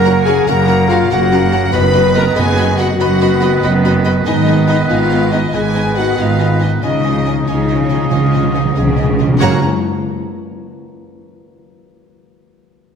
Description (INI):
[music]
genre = cinematic, heroic adventure film score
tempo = 94 BPM (dotted quarters)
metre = 12/8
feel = straight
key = F# major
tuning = A4 = 442 Hz
[part]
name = warm symphonic violin section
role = melody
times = 0.0-9.6 s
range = C#5 to B5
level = -24 LUFS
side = left 2 dB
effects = none
[part]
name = clear oboe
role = second line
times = 0.0-9.6 s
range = A#4 to D#5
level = -24 LUFS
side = right 2 dB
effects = none
[part]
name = rich chamber violin section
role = second line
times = 0.0-9.6 s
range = C#5 to B5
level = -26 LUFS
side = left 2 dB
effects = none
[part]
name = small flute group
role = second line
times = 0.0-9.6 s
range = D#5 to A#5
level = -24 LUFS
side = right 2 dB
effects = none
[part]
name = clear trombone section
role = sustained chords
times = 0.0-9.6 s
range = C#3 to D#4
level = -23 LUFS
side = right 4 dB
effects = none
[part]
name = warm French horn section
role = sustained chords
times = 0.0-9.6 s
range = C#4 to B4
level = -18 LUFS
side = left 5 dB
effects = none
[part]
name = concert harp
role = arpeggios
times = 0.0-12.0 s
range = F#2 to D#6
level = -24 LUFS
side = left 9 dB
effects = none
[part]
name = rich studio double bass section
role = bass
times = 0.0-9.6 s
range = F#1 to C#2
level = -18 LUFS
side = right 3 dB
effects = none
[part]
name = rich symphonic cello section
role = bass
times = 0.0-9.7 s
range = F#2 to C#3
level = -19 LUFS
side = right 3 dB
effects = none
[part]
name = rich symphonic viola section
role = accompaniment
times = 0.1-9.7 s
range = B3 to G#4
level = -24 LUFS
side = right 1 dB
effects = none
[part]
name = timpani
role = percussion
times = 1.7-2.3, 6.8-9.6 s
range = F#2 to C#3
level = -18 LUFS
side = equal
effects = none
[sound]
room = wet scoring stage reverb, RT60 1.9 s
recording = none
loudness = -11 LUFS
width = side -7 dB against mid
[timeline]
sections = 0.0-9.4 A section; 9.4-12.0 B section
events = timpani fill 6.8-9.4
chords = 0.0 F#; 1.7 B/F#; 4.3 G#m; 6.8 C#add9; 9.4 F#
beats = 0.48 1.11 | 1.74 2.38 3.01 3.64 | 4.28 4.91 5.54 6.18 | 6.83 7.48 8.12 8.77 | 9.41 10.05 10.69 11.33